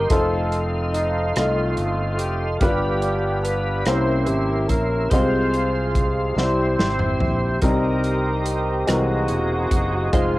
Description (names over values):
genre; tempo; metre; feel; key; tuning
slow gospel; 48 BPM (dotted quarters); 6/8; straight; F minor; A4 = 438 Hz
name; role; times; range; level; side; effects
clear horn section; melody; 0.0-10.4 s; Ab3 to C5; -26 LUFS; equal; none
clear upright piano; accompaniment; 0.0-10.4 s; G2 to Eb5; -24 LUFS; left 1 dB; none
percussive tonewheel organ; sustained chords; 0.0-10.4 s; Db4 to C6; -27 LUFS; right 2 dB; fast rotary speaker, overdrive, chorus vibrato
fingered electric bass; bass; 0.0-10.4 s; E1 to C2; -25 LUFS; equal; none
natural country drum kit; drums; 0.1-10.3 s; hi-hat, kick drum, rim click, snare drum, toms; -24 LUFS; equal; cassette tape
room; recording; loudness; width
light reverb, small room ambience; home recording on cassette; -18 LUFS; side -18 dB against mid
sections
0.0-10.4 A section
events
drum fill 6.4-7.6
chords
0.1 F7; 2.6 G7; 3.9 C7b9; 5.1 Fm/C; 6.4 C; 7.6 Cm7; 8.9 C7alt